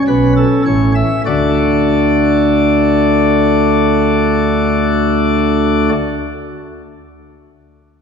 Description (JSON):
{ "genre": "classical, baroque-style 3-part fugue for pipe organ", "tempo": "50 BPM", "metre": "4/4", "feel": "straight", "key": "D major", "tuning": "A4 = 440 Hz", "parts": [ { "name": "pipe organ, sparkling flutes", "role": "solo", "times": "0.0-5.9 s", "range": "A1 to E5", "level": "-11 LUFS", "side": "equal", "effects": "none" } ], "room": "wet church reverb, RT60 2.8 s", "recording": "minimal, uncompressed stereo recording", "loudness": "-11 LUFS", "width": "side -6 dB against mid", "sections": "0.0-1.3 A section; 1.3-6.1 B section", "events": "slowing down 0.0-1.3", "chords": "0.0 A; 1.3 D" }